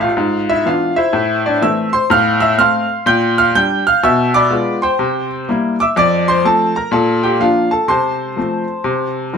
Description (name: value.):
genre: jazz, stride piano.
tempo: 124 BPM.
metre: 4/4.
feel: swing 64% on 8ths.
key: F major.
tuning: A4 = 440 Hz.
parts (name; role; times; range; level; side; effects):
bright baby grand piano; solo; 0.0-9.4 s; F2 to G6; -12 LUFS; equal; none.
room: wet small room reverb, RT60 0.5 s.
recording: band playing live in one room.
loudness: -12 LUFS.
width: side -6 dB against mid.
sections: 0.0-9.4 A section.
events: none.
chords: 0.2 E7/G#; 1.1 Am; 2.1 F/A; 3.1 Gm/Bb; 4.0 Bdim7; 5.0 C7; 6.0 F; 6.9 Bbmaj7; 7.9 F/C; 8.8 N.C..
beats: | 0.17 0.65 1.13 1.62 | 2.10 2.58 3.06 3.54 | 4.03 4.51 4.99 5.47 | 5.96 6.44 6.92 7.40 | 7.88 8.37 8.85 9.33.